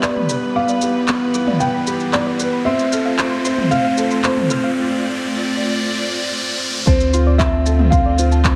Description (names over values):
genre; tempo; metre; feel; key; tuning
piano and strings electronica; 114 BPM; 4/4; straight; unclear; A4 = 439 Hz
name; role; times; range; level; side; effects
felt-muted upright piano; melody; 0.0-8.6 s; C5 to G5; -25 LUFS; equal; tape echo
warm symphonic string section; sustained chords; 0.0-8.6 s; D3 to D5; -27 LUFS; equal; sidechain pumping
soft round pluck; arpeggios; 0.0-8.5 s; B4 to F6; -31 LUFS; equal; chorus, cassette tape, sidechain pumping, tape echo
warm baby grand piano; riff; 0.0-8.6 s; B3 to C5; -23 LUFS; equal; tape echo
organic electronic drum kit; drums; 0.0-8.6 s; handclaps, shaker, toms; -24 LUFS; equal; none
riser; sound effects; 0.0-6.9 s; none; -29 LUFS; equal; none
warm sub bass; bass; 6.9-8.6 s; D2; -18 LUFS; equal; sidechain pumping
electronic kick drum; drums; 6.9-8.6 s; none; -19 LUFS; equal; none
room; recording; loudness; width
moderate echo chamber reverb, RT60 1.7 s; none; -18 LUFS; mono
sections
0.0-6.9 A section; 6.9-8.6 B section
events
build-up 0.0-6.9; riser 0.0-6.9; filter sweep on felt piano 0.0-6.9; drop 6.9-8.6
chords
0.0 G; 2.7 F; 6.9 Dm7